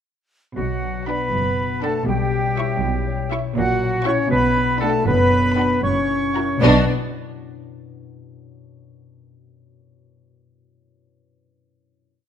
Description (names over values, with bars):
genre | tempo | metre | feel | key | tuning
cinematic, playful, whimsical film cue | 79 BPM (dotted quarters) | 6/8 | uneven beats | B minor | A4 = 443 Hz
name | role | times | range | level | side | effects
bright small flute group | second line | 0.6-6.9 s | D5 to C#6 | -26 LUFS | right 1 dB | none
clear oboe | second line | 0.6-6.8 s | F#4 to C#5 | -28 LUFS | right 2 dB | none
mellow clarinet | second line | 0.6-6.8 s | F#4 to D5 | -27 LUFS | equal | none
dark French horn section | sustained chords | 0.6-6.8 s | F#3 to D4 | -24 LUFS | left 2 dB | none
concert harp | arpeggios | 0.6-6.9 s | F#2 to F#5 | -26 LUFS | left 9 dB | none
rich chamber double bass section | bass | 0.6-6.9 s | F#1 to B1 | -26 LUFS | right 3 dB | none
rich symphonic cello section | bass | 0.6-6.9 s | F#2 to B2 | -26 LUFS | right 3 dB | none
clear chamber violin section | melody | 1.1-6.9 s | D4 to C#6 | -28 LUFS | left 3 dB | none
rich studio violin section | second line | 1.1-6.9 s | D4 to F#5 | -30 LUFS | left 1 dB | none
rich studio viola section | accompaniment | 1.1-6.9 s | B3 to E4 | -26 LUFS | right 3 dB | none
room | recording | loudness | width
light reverb | close, detailed microphones | -17 LUFS | side -8 dB against mid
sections
0.6-6.6 A section; 6.6-8.2 final chord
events
none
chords
0.6 Bm; 2.1 C#m7b5/B; 3.6 F#7/A#; 4.3 Bm; 5.1 Bm/F#; 5.8 F#7; 6.6 Bm